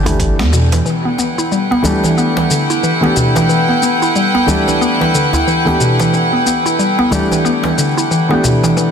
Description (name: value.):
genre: organic downtempo.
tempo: 91 BPM.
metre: 4/4.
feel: swing 60% on 16ths.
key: E minor.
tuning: A4 = 436 Hz.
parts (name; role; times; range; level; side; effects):
felt-muted upright piano; accompaniment; 0.0-8.9 s; E3 to G4; -18 LUFS; equal; sidechain pumping, tape echo.
mallet-like synth pluck; arpeggios; 0.0-8.9 s; B2 to E4; -15 LUFS; equal; chorus, tape echo.
warm sub bass; bass; 0.0-0.8 s; G1 to E2; -14 LUFS; equal; none.
dusty soul sampler-style drum kit; drums; 0.1-8.9 s; hi-hat, shaker, snare drum; -22 LUFS; left 3 dB; small room reverb.
djembe; percussion; 0.1-8.7 s; none; -25 LUFS; left 1 dB; none.
rich chamber string section; sustained chords; 0.9-8.9 s; E4 to G5; -17 LUFS; left 1 dB; sidechain pumping.
room: moderate echo chamber reverb, RT60 2.3 s.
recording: dense, heavily limited modern master.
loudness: -11 LUFS.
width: side -7 dB against mid.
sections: 0.9-8.9 A section.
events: band accent 0.4-0.7; filter sweep on synth pluck 0.9-8.9.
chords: 0.0 A9sus4; 0.9 Emadd9.